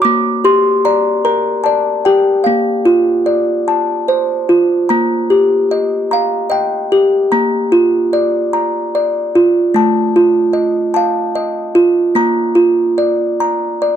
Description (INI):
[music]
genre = children's music, lullaby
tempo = 50 BPM (dotted quarters)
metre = 6/8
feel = straight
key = Bb major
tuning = A4 = 440 Hz
[part]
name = music box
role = solo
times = 0.0-14.0 s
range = A3 to D6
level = -11 LUFS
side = equal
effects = none
[sound]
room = light reverb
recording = dry, close 1970s-style studio recording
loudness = -11 LUFS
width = side -9 dB against mid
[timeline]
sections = 0.0-14.0 A section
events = none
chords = 0.0 Gm; 2.5 Bb; 3.7 F; 4.9 Eb; 7.3 Bb; 9.7 F7; 12.2 Bb